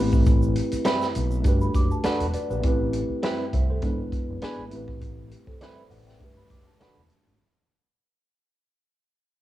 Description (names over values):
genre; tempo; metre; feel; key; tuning
lush 1970s-style soul; 101 BPM; 4/4; swing 54% on 16ths; A dorian; A4 = 439 Hz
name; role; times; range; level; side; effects
tine electric piano; accompaniment; 0.0-7.4 s; G#3 to G5; -28 LUFS; equal; wide subtle chorus, cassette tape
overdriven fingered electric bass; bass; 0.0-7.4 s; E1 to C2; -26 LUFS; left 1 dB; none
vintage drum kit; drums; 0.1-7.2 s; hi-hat, kick drum, snare drum; -26 LUFS; equal; cassette tape
egg shaker; percussion; 0.1-2.6 s; none; -52 LUFS; right 6 dB; none
direct-recorded clean electric guitar; riff; 0.9-7.0 s; G3 to B4; -28 LUFS; right 2 dB; cassette tape
celesta; texture; 1.6-2.6, 6.4-7.4 s; A5 to D6; -37 LUFS; right 1 dB; cassette tape
room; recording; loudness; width
studio reverb; home recording on cassette; -22 LUFS; side -14 dB against mid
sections
0.0-7.4 A section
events
fade-out 0.0-7.4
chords
0.0 Am9; 1.4 Gmaj9; 2.6 Am9; 3.8 E7; 4.7 Am9; 6.2 Gmaj9